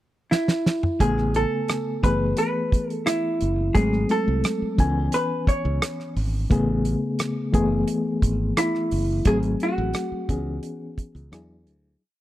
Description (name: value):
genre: lush 1970s-style soul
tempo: 87 BPM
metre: 4/4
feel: straight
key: A major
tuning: A4 = 442 Hz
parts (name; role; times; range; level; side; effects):
- hollow-body jazz guitar; melody; 0.3-11.3 s; E4 to C#5; -25 LUFS; right 1 dB; none
- damped 70s drum kit; drums; 0.3-11.8 s; hi-hat, kick drum, rim click, snare drum, toms; -22 LUFS; right 1 dB; none
- reed electric piano; accompaniment; 1.0-12.0 s; C#3 to G#5; -25 LUFS; left 2 dB; fast tremolo
- modern bright fingered electric bass; bass; 1.0-11.9 s; F#1 to E2; -25 LUFS; equal; none
room: little or no reverb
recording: dry, close 1970s-style studio recording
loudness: -21 LUFS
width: side -14 dB against mid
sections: 0.0-1.0 pickup bar; 1.0-12.0 verse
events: drum fill 0.3-1.0; fade-out 9.3-12.0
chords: 0.0 N.C.; 1.0 Amaj9; 2.0 F#m11; 3.8 G#7b9; 4.8 C#m7; 6.5 Amaj9; 7.5 F#m11; 9.3 G#7b9; 10.3 C#m7; 11.3 E9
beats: 0.32 | 1.00 1.69 2.38 3.07 | 3.76 4.44 5.13 5.82 | 6.50 7.19 7.88 8.57 | 9.25 9.94 10.63 11.32